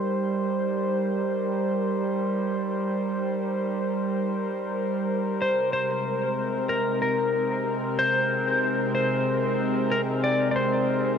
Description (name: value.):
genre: ambient.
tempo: 93 BPM.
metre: 4/4.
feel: swing 56% on 16ths.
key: C minor.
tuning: A4 = 440 Hz.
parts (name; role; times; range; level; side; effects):
warbly tape-like pad; sustained chords; 0.0-11.2 s; C3 to C5; -25 LUFS; equal; chorus, built-in reverb.
clean lap steel guitar; melody; 5.4-11.2 s; Bb4 to D5; -25 LUFS; left 1 dB; dub echo.
room: wet concert hall reverb, RT60 1.7 s, digital ambience.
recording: none.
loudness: -23 LUFS.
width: side -7 dB against mid.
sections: 0.0-11.2 A section.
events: none.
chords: 0.0 Cm7; 5.4 Abadd9/C.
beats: | 0.25 0.90 1.54 2.19 | 2.83 3.48 4.12 4.77 | 5.41 6.06 6.70 7.35 | 7.99 8.64 9.29 9.93 | 10.57.